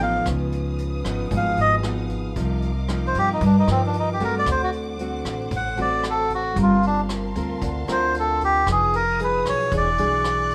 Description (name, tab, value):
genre	bossa nova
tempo	114 BPM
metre	4/4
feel	straight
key	unclear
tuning	A4 = 440 Hz
part	melodica	melody	0.0-10.5 s	C4 to F#5	-23 LUFS	equal	none
part	nylon-string guitar	accompaniment	0.0-10.5 s	G2 to C#5	-27 LUFS	equal	none
part	warm studio string section	sustained chords	0.0-10.5 s	Ab4 to F#6	-40 LUFS	equal	none
part	upright bass	bass	0.0-10.5 s	E1 to G2	-29 LUFS	equal	none
part	vintage brush drum kit	drums	0.0-10.5 s	hi-hat, kick drum, rim click	-35 LUFS	equal	none
room	moderate studio reverb, RT60 0.8 s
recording	none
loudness	-22 LUFS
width	mono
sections	0.0-10.5 A section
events	melodica solo 0.0-10.5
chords	0.3 Db9; 2.4 Cm11; 4.5 D7; 6.6 Gm11; 8.7 Fm7b5; 9.7 E13